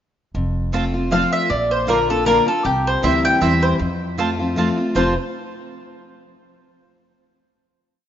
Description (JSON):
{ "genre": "bluegrass", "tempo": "156 BPM", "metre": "3/4", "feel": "swing 55% on 8ths", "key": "F major", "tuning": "A4 = 440 Hz", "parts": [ { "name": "picked steel-string acoustic guitar", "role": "accompaniment", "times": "0.3-5.1 s", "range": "F2 to F4", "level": "-21 LUFS", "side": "left 2 dB", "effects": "none" }, { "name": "upright bass", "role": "bass", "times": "0.3-5.2 s", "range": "F1 to F2", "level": "-24 LUFS", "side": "right 1 dB", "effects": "none" }, { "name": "mandolin", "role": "stabs", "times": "0.7-5.1 s", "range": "Bb3 to Bb5", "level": "-28 LUFS", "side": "right 7 dB", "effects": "none" }, { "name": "mandolin", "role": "melody", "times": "1.1-5.2 s", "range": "G4 to G5", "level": "-19 LUFS", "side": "equal", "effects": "none" } ], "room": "moderate lush hall reverb, RT60 2.9 s", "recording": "rough home demo mix, nothing above 7.5 kHz", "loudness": "-16 LUFS", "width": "side -10 dB against mid", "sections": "0.4-5.0 A section; 5.0-6.1 final chord", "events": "none", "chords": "0.4 F; 1.5 Bb; 2.7 C; 3.8 F" }